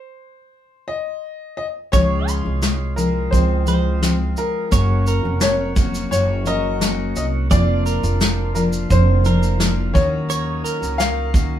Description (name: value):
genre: acoustic pop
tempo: 86 BPM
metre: 4/4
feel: straight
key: Db major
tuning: A4 = 439 Hz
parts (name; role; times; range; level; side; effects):
- clear upright piano; melody; 0.0-11.6 s; Bb4 to F5; -24 LUFS; left 1 dB; none
- fingerpicked steel-string acoustic guitar; accompaniment; 1.9-11.6 s; Gb2 to Gb4; -23 LUFS; left 3 dB; none
- overdriven tonewheel organ; sustained chords; 1.9-11.6 s; D3 to Gb4; -33 LUFS; equal; slow rotary speaker
- direct-recorded clean electric guitar; arpeggios; 1.9-11.3 s; Bb4 to C6; -27 LUFS; right 6 dB; none
- upright bass; bass; 1.9-11.6 s; F1 to Eb2; -20 LUFS; right 1 dB; none
- soft brush drum kit; drums; 1.9-11.5 s; kick drum, shaker, snare drum; -20 LUFS; equal; none
room: moderate studio reverb, RT60 0.6 s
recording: band playing live in one room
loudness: -16 LUFS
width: side -11 dB against mid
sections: 0.0-1.9 A section; 1.9-11.6 B section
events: stop 0.0-1.9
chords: 0.0 N.C.; 1.9 Dbmaj7; 4.7 Gb; 7.5 Bb/F; 9.9 Ebm7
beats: 0.54 1.24 | 1.94 2.63 3.33 4.03 | 4.72 5.42 6.11 6.81 | 7.51 8.20 8.90 9.59 | 10.29 10.99